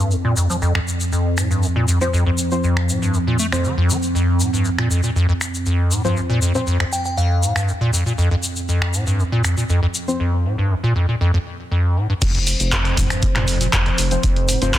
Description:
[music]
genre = acid house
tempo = 119 BPM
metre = 4/4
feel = straight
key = F major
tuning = A4 = 441 Hz
[part]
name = warbly tape-like pad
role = sustained chords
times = 0.0-14.8 s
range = F2 to C5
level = -24 LUFS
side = equal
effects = chorus, built-in reverb, sidechain pumping
[part]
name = liquid acid bass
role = riff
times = 0.0-14.8 s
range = F2 to A3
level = -19 LUFS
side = equal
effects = chorus, sidechain pumping
[part]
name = tube shaker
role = percussion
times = 0.1-14.8 s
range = none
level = -27 LUFS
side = left 2 dB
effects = none
[part]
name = punchy analog drum machine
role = drums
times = 0.8-14.8 s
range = crash cymbal, finger snaps, handclaps, hi-hat, toms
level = -24 LUFS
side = equal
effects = soft clipping on snare, small room ambience
[part]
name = deep mellow chord stab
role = stabs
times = 2.0-6.7, 10.1-10.2, 14.1-14.8 s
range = F3 to C5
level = -25 LUFS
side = left 2 dB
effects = chorus, ping-pong delay
[part]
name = glassy synth bell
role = melody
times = 6.9-7.7 s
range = F5 to G5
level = -27 LUFS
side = left 1 dB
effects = chorus, dub echo
[part]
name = round analog bass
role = bass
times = 12.2-14.8 s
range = Eb1 to F1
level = -23 LUFS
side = equal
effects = sidechain pumping
[part]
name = electronic kick drum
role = drums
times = 12.2-14.8 s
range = none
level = -20 LUFS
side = equal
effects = small room ambience
[sound]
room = light reverb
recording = dense, heavily limited modern master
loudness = -16 LUFS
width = side -12 dB against mid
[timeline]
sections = 0.0-12.2 A section; 12.2-14.8 B section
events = drop 12.2-14.8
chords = 0.0 F5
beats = | 0.12 0.62 1.12 1.63 | 2.13 2.64 3.14 3.65 | 4.15 4.66 5.16 5.66 | 6.17 6.67 7.18 7.68 | 8.18 8.69 9.19 9.70 | 10.20 10.71 11.21 11.71 | 12.22 12.72 13.23 13.73 | 14.23 14.74

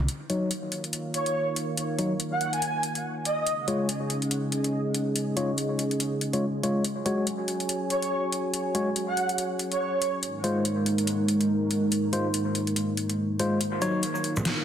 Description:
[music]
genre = deep dubstep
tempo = 142 BPM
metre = 4/4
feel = swing 57% on 16ths, half-time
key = Eb minor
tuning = A4 = 440 Hz
[part]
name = congas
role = percussion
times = 0.0-0.1, 14.4 s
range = none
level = -33 LUFS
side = right 1 dB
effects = dub echo
[part]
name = dark analog pad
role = sustained chords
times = 0.1-14.6 s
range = Ab3 to Ab5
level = -28 LUFS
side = right 1 dB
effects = chorus
[part]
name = dubstep drum kit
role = drums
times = 0.1-14.5 s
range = hi-hat, shaker, snare drum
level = -31 LUFS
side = left 1 dB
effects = overdrive
[part]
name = tine electric piano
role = stabs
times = 0.3-14.0 s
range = Gb3 to Db5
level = -29 LUFS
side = left 2 dB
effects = low-pass filter, dub echo
[part]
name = breathy flute-like synth lead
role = melody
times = 1.1-3.5, 7.9-10.1 s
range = Db5 to Ab5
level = -30 LUFS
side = right 1 dB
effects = tremolo, ensemble chorus, dub echo
[sound]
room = wet digital room reverb, RT60 1.1 s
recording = dense, heavily limited modern master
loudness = -25 LUFS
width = side -9 dB against mid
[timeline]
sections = 0.1-13.6 A section; 13.6-14.6 B section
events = build-up 13.6-14.6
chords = 0.1 Eb5; 3.5 Db; 6.8 Gbsus2; 10.2 Ab6; 13.6 Ebm7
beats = | 0.09 0.51 0.93 1.35 | 1.77 2.20 2.62 3.04 | 3.47 3.89 4.31 4.73 | 5.16 5.58 6.00 6.42 | 6.85 7.27 7.69 8.11 | 8.54 8.96 9.38 9.80 | 10.23 10.65 11.07 11.49 | 11.92 12.34 12.76 13.18 | 13.61 14.03 14.45

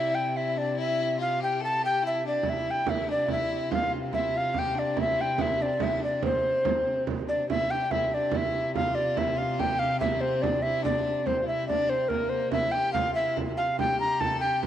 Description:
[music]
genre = medieval dance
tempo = 143 BPM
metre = 3/4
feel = straight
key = C mixolydian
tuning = A4 = 440 Hz
[part]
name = mellow tenor recorder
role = melody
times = 0.0-14.6 s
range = Bb4 to Bb5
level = -26 LUFS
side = equal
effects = cassette tape
[part]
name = clear fiddle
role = second line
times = 0.0-14.6 s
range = Bb3 to A4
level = -35 LUFS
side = left 8 dB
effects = cassette tape
[part]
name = warm viola da gamba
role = drone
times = 0.0-14.7 s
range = C3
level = -35 LUFS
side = left 1 dB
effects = stereo widening, cassette tape
[part]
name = frame drum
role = percussion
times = 2.4-14.7 s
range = none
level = -32 LUFS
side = right 7 dB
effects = none
[sound]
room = moderate lush hall reverb, RT60 2.8 s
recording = home recording on cassette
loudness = -24 LUFS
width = side -10 dB against mid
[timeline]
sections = 0.0-7.5 A section; 7.5-14.7 A section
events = none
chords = none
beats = 0.35 0.77 | 1.19 1.61 2.03 | 2.45 2.87 3.29 | 3.71 4.13 4.55 | 4.97 5.39 5.81 | 6.23 6.65 7.07 | 7.49 7.91 8.33 | 8.75 9.17 9.59 | 10.01 10.43 10.85 | 11.27 11.69 12.11 | 12.53 12.95 13.37 | 13.79 14.21 14.62

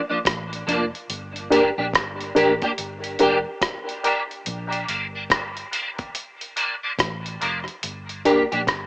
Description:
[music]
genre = dub reggae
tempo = 71 BPM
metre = 4/4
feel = swing 63% on 16ths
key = Bb major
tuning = A4 = 442 Hz
[part]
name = clean electric guitar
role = accompaniment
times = 0.1-8.6 s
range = F3 to G4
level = -25 LUFS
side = equal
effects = ensemble chorus, high-pass filter, dub echo
[part]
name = vintage muted fingered electric bass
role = bass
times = 0.3-8.9 s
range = F1 to Bb1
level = -35 LUFS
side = equal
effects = none
[part]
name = dusty soul sampler-style drum kit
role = drums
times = 0.3-8.9 s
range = hi-hat, kick drum, rim click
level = -24 LUFS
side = equal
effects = cassette tape, dub echo
[part]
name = reed electric piano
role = stabs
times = 1.5-8.4 s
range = D4 to Bb4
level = -22 LUFS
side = equal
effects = overdrive, fast tremolo, high-pass filter, dub echo
[sound]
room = moderate spring reverb, RT60 2.3 s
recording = home recording on cassette, small speaker sound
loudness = -20 LUFS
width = side -24 dB against mid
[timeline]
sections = 0.0-8.9 A section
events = break 0.0-1.1; filter sweep 1.1-7.8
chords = 0.0 Bb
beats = 0.24 | 1.09 1.93 2.77 3.62 | 4.46 5.30 6.14 6.99 | 7.83 8.67

